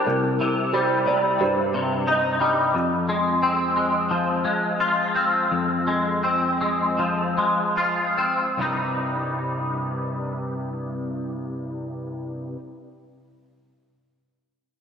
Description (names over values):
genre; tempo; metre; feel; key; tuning
rock; 72-89 BPM; 4/4; straight; C minor; A4 = 440 Hz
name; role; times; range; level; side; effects
felt-muted upright piano; arpeggios; 0.0-2.7 s; Bb4 to Eb5; -26 LUFS; right 4 dB; analog delay
twangy electric guitar; arpeggios; 0.0-12.6 s; C2 to F4; -21 LUFS; left 1 dB; ensemble chorus, analog delay
room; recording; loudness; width
wet concert hall reverb, RT60 2.3 s; big arena sound; -21 LUFS; side -7 dB against mid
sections
0.0-8.6 A section; 8.6-11.9 B section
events
slowing down 2.7-8.6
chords
0.1 Cm; 2.7 Fm; 8.6 Cm